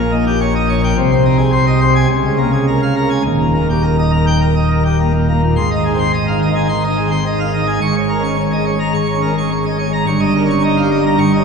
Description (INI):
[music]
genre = classical, organ toccata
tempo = 106 BPM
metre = 4/4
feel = straight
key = Ab major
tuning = A4 = 439 Hz
[part]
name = pipe organ, plenum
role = solo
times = 0.0-11.4 s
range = Eb1 to Db6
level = -12 LUFS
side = equal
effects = none
[sound]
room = wet cathedral reverb, RT60 4.2 s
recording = recorded in a church or concert hall, small room ambience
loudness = -12 LUFS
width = side -5 dB against mid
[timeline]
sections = 0.0-5.6 A section; 5.6-11.4 B section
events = none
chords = 0.0 Eb7/Bb; 1.0 Ab/C; 2.1 Bbm7/Db; 3.2 Eb; 5.6 Ab; 7.8 Bbm7/Ab; 10.1 Eb7/G